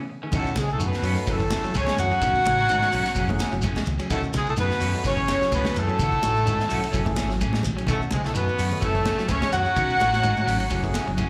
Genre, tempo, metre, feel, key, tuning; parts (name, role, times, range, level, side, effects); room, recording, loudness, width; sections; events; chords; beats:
afrobeat; 127 BPM; 4/4; swing 55% on 16ths; B mixolydian; A4 = 440 Hz
warm horn section; melody; 0.0-11.3 s; G#3 to F#5; -27 LUFS; equal; plate reverb
bright trumpet; second line; 0.0-0.1, 7.9-11.3 s; G#3 to F#4; -36 LUFS; equal; plate reverb
growling baritone saxophone; second line; 0.0-11.3 s; G#2 to F#3; -36 LUFS; equal; plate reverb, slapback echo
electric guitar at the edge of break-up; arpeggios; 0.0-11.2 s; C#3 to G#3; -34 LUFS; equal; slapback echo, tape echo
clean electric guitar; stabs; 0.1-11.3 s; D#3 to G#4; -36 LUFS; equal; plate reverb, slapback echo
barky tine electric piano; accompaniment; 0.3-11.1 s; A3 to G#4; -39 LUFS; equal; overdrive, phaser, plate reverb, slapback echo
hollow-body short-scale fingered electric bass; bass; 0.3-11.3 s; F#1 to G#2; -30 LUFS; equal
tight funk drum kit; drums; 0.3-11.3 s; hi-hat, kick drum, ride cymbal, snare drum; -34 LUFS; equal
congas; percussion; 0.3-11.3 s; -35 LUFS; equal; slapback echo
shekere; percussion; 0.3-11.3 s; -37 LUFS; equal; slapback echo
moderate club reverb, RT60 0.7 s; live gig heard through the venue's PA, club reverb; -23 LUFS; mono
0.3-11.3 A section
break 0.0-0.3
0.3 B9; 1.3 F#m9; 2.2 B9; 3.2 F#m9; 4.1 B9; 5.0 F#m9; 6.0 B9; 6.9 F#m9; 7.9 B9; 8.8 F#m9; 9.8 B9; 10.7 F#m9
| 0.33 0.80 1.27 1.75 | 2.22 2.69 3.16 3.63 | 4.11 4.58 5.05 5.52 | 5.99 6.46 6.94 7.41 | 7.88 8.35 8.82 9.29 | 9.77 10.24 10.71 11.18